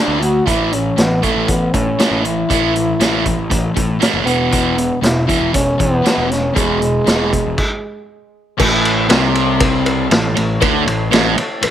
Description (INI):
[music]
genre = classic rock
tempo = 118 BPM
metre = 4/4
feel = straight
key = A major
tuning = A4 = 443 Hz
[part]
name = warm French horn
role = melody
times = 0.0-8.1 s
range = G#3 to F#4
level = -18 LUFS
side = equal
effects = none
[part]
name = crunchy overdriven guitar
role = riff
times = 0.0-11.7 s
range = E2 to D4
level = -20 LUFS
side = right 11 dB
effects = phaser
[part]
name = sludgy distorted guitar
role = riff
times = 0.0-11.6 s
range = E2 to D4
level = -21 LUFS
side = left 10 dB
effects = overdrive
[part]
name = fuzz picked electric bass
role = bass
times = 0.1-11.7 s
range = E1 to A2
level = -21 LUFS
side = equal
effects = overdrive
[part]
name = vintage drum kit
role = drums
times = 0.2-11.7 s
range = crash cymbal, hi-hat, kick drum, ride cymbal, snare drum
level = -17 LUFS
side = equal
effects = none
[part]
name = mellow tonewheel organ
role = sustained chords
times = 8.6-11.7 s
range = E4 to A5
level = -26 LUFS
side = left 1 dB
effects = slow rotary speaker, overdrive, chorus vibrato
[part]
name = cowbell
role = percussion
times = 8.6-11.7 s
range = none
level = -23 LUFS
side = left 6 dB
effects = none
[sound]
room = light reverb, studio reverb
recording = none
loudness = -13 LUFS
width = side -10 dB against mid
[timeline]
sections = 0.0-8.6 A section; 8.6-11.7 B section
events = stop 7.6-8.6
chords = 0.5 A; 4.3 E; 8.6 A